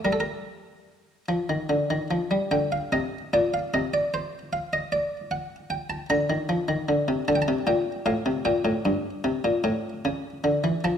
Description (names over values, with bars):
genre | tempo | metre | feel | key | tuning
classical, baroque-style two-part invention for harpsichord | 50 BPM (dotted quarters) | 6/8 | straight | G minor | A4 = 439 Hz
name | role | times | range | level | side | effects
buff-stop harpsichord | solo | 0.0-11.0 s | G2 to Bb5 | -23 LUFS | equal | none
room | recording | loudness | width
moderate recital hall reverb, RT60 1.8 s | none | -23 LUFS | side -8 dB against mid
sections
0.0-2.5 A section; 2.5-11.0 B section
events
none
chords
0.1 Gm; 3.7 Cm; 4.9 D7/C; 6.1 Cm11; 7.3 Dm; 8.5 Gm; 9.6 A7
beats
| 0.06 1.29 | 2.52 3.74 | 4.92 6.09 | 7.28 8.46 | 9.64 10.84